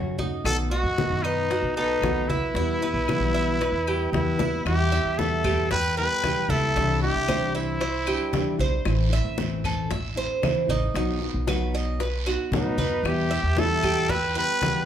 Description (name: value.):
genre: latin, Cuban son and guajira.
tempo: 114 BPM.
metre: 4/4.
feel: straight.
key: E harmonic minor, E minor from 4.7 s.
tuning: A4 = 437 Hz.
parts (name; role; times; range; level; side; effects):
nylon-string guitar; accompaniment; 0.0-14.9 s; B2 to F#4; -30 LUFS; left 2 dB; none.
Cuban tres; arpeggios; 0.0-14.9 s; D#4 to E5; -31 LUFS; right 4 dB; none.
upright bass; bass; 0.0-14.4 s; A1 to A2; -28 LUFS; equal; none.
congas; percussion; 0.2-14.9 s; none; -31 LUFS; equal; none.
mellow silver concert flute; second line; 0.4-8.6, 12.5-14.8 s; B4 to G5; -32 LUFS; right 2 dB; none.
growling trumpet; melody; 0.5-8.6, 12.5-14.9 s; D#4 to B4; -26 LUFS; equal; none.
bongos; percussion; 0.5-14.9 s; none; -33 LUFS; left 5 dB; none.
claves; percussion; 0.5-14.9 s; none; -39 LUFS; left 5 dB; none.
guiro; percussion; 4.7-14.9 s; none; -39 LUFS; right 6 dB; none.
room: moderate large studio reverb, RT60 0.8 s.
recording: band playing live in one room.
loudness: -22 LUFS.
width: side -9 dB against mid.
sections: 0.0-4.7 A section; 4.7-14.9 B section.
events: drum fill 4.4.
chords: 0.5 B7; 2.6 Em; 6.8 Cadd9; 8.9 Am; 11.0 B; 13.1 Em.